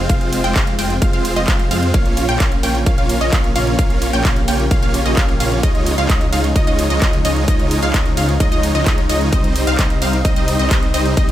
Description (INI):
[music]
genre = EDM, festival progressive house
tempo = 130 BPM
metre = 4/4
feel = straight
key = unclear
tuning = A4 = 440 Hz
[part]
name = lush unison pad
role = sustained chords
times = 0.0-11.3 s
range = C3 to G4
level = -24 LUFS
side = left 1 dB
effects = chorus, sidechain pumping
[part]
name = wide unison pluck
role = arpeggios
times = 0.0-11.3 s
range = Eb5 to G5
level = -24 LUFS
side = equal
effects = sidechain pumping, tape echo
[part]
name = supersaw chords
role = riff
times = 0.0-11.3 s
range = G3 to G5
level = -20 LUFS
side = right 1 dB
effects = cassette tape, sidechain pumping, tape echo
[part]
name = detuned saw bass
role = bass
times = 0.0-11.3 s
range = F1 to F2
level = -21 LUFS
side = equal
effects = sidechain pumping
[part]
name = big-room dance drum kit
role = drums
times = 0.1-11.3 s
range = handclaps, hi-hat, ride cymbal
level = -25 LUFS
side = right 1 dB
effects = small room ambience
[part]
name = electronic kick drum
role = drums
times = 0.1-11.3 s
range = none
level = -16 LUFS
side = equal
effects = overdrive, small room ambience
[sound]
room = little or no reverb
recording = none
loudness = -14 LUFS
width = side -12 dB against mid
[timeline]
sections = 0.0-11.3 A section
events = none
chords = 0.0 Fm; 1.9 Bbm; 5.6 Dbadd9; 9.3 Cm